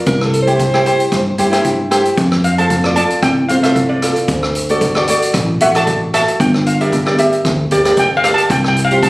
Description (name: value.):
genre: calypso.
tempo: 114 BPM.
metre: 4/4.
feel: swing 54% on 16ths.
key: F major.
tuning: A4 = 445 Hz.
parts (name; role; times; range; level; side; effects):
steel pan; melody; 0.0-9.1 s; D5 to A5; -17 LUFS; equal; none.
ukulele; accompaniment; 0.0-9.1 s; E4 to E5; -15 LUFS; equal; none.
clear alto saxophone; second line; 0.1-1.4 s; A4 to C5; -17 LUFS; right 2 dB; none.
upright bass; bass; 0.1-9.1 s; G1 to G2; -16 LUFS; equal; none.
street-band drum kit; drums; 0.1-9.1 s; hi-hat, kick drum, rim click; -20 LUFS; equal; none.
room: moderate small room reverb, RT60 0.5 s.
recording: recorded on a phone in the room, studio reverb.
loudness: -11 LUFS.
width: side -20 dB against mid.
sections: 0.0-9.1 A section.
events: steel pan solo 0.0-9.1.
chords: 0.1 C; 2.2 F; 4.3 D; 6.4 Gm; 8.5 Csus4.